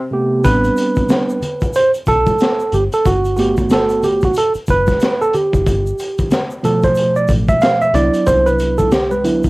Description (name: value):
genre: hip hop, jazz-hop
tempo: 92 BPM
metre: 4/4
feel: swing 60% on 16ths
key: A dorian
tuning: A4 = 439 Hz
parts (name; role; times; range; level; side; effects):
- tine electric piano; accompaniment; 0.1-9.5 s; B2 to F5; -14 LUFS; right 2 dB; cassette tape
- deep dub picked electric bass; bass; 0.4-9.5 s; F#1 to C2; -20 LUFS; left 1 dB; none
- crunchy breakbeat drum kit; drums; 0.4-9.5 s; hi-hat, kick drum, snare drum; -19 LUFS; left 1 dB; cassette tape
- tube shaker and congas; percussion; 0.4-9.5 s; none; -29 LUFS; left 2 dB; none
room: light reverb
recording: home recording on cassette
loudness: -13 LUFS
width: side -21 dB against mid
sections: 0.4-9.5 A section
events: break 0.0-0.4; tine electric piano solo 0.4-9.5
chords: 0.4 Am11; 3.1 Gmaj9; 5.7 G9; 7.9 Cmaj9#11